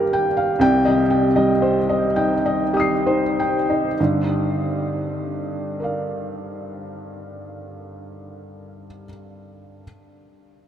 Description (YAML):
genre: neoclassical minimalist piano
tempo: 31-42 BPM (dotted quarters)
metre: 6/8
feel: rubato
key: G minor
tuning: A4 = 440 Hz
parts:
  - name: felt-muted upright piano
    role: solo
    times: 0.0-9.8 s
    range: G1 to C7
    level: -19 LUFS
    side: equal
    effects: none
room: wet huge ambient reverb, RT60 8.2 s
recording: in a vast, echoing space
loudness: -18 LUFS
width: side -9 dB against mid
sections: 0.0-4.0 A section; 4.0-7.6 B section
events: slowing down 0.0-4.0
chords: 0.0 Gm7; 0.6 Cm; 4.0 Gm7